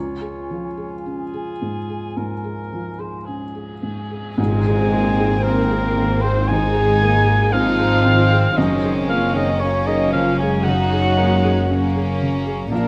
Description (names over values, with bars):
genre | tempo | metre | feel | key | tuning
cinematic, emotional film score for orchestra | 53-59 BPM | 4/4 | rubato | Ab mixolydian | A4 = 440 Hz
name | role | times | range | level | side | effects
mellow clarinet | second line | 0.0-3.2 s | F4 | -35 LUFS | equal | none
mellow cor anglais | second line | 0.0-12.9 s | Ab4 to Ab5 | -26 LUFS | equal | none
mellow hollow concert flute | second line | 0.0-4.0 s | Ab5 | -39 LUFS | equal | none
felt-muted upright piano | accompaniment | 0.0-12.9 s | Bb1 to Ab4 | -27 LUFS | equal | none
warm symphonic violin section | melody | 4.4-12.9 s | C4 to Eb4 | -28 LUFS | equal | none
warm studio violin section | second line | 4.4-12.9 s | Ab3 to Gb4 | -31 LUFS | equal | none
dark symphonic viola section | accompaniment | 4.4-12.9 s | Db4 to C5 | -29 LUFS | equal | none
mellow French horn section | sustained chords | 4.4-12.9 s | Db3 to C4 | -27 LUFS | equal | none
rich symphonic double bass section | bass | 4.4-12.9 s | Gb1 to Bb1 | -25 LUFS | equal | none
warm symphonic cello section | bass | 4.4-12.9 s | Gb2 to Bb2 | -26 LUFS | equal | none
tam-tam | percussion | 4.4-8.5 s | none | -34 LUFS | equal | none
room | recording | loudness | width
moderate recital hall reverb, RT60 1.6 s | none | -18 LUFS | mono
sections
0.0-4.4 A section; 4.4-12.9 A section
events
band accent 4.4-5.4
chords
0.0 Db; 4.4 Abadd9; 8.6 Gbadd9